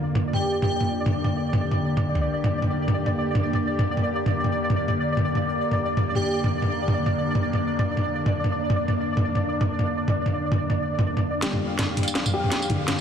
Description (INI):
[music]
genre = half-time drum and bass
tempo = 165 BPM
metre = 4/4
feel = swing 59% on 16ths, half-time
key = G minor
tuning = A4 = 444 Hz
[part]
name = bowed-like drone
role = sustained chords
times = 0.0-13.0 s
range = D3 to G4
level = -28 LUFS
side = equal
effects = built-in reverb, phaser
[part]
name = pulsing gated texture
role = texture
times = 0.0-13.0 s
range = D5 to F5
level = -29 LUFS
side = equal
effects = chorus, built-in reverb
[part]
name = drum and bass drum kit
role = drums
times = 0.2-13.0 s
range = hi-hat, snare drum, tambourine, toms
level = -24 LUFS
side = equal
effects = none
[part]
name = airy dreamy lead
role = melody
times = 0.3-0.9, 6.2-6.4 s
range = G4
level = -32 LUFS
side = equal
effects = chorus, ping-pong delay
[part]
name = felt-muted upright piano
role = arpeggios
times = 11.4-13.0 s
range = D3 to G4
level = -29 LUFS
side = left 3 dB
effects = low-pass filter, ping-pong delay
[part]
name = long sustained 808-style bass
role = bass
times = 11.4-13.0 s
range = G1 to Bb1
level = -35 LUFS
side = equal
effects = none
[sound]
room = moderate huge ambient reverb, RT60 7.4 s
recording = dense, heavily limited modern master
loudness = -22 LUFS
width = side -8 dB against mid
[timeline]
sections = 0.0-11.4 A section; 11.4-13.0 B section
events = build-up 11.4-13.0; drum fill 11.4-13.0; filter sweep on felt piano 11.4-13.0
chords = 0.0 Gm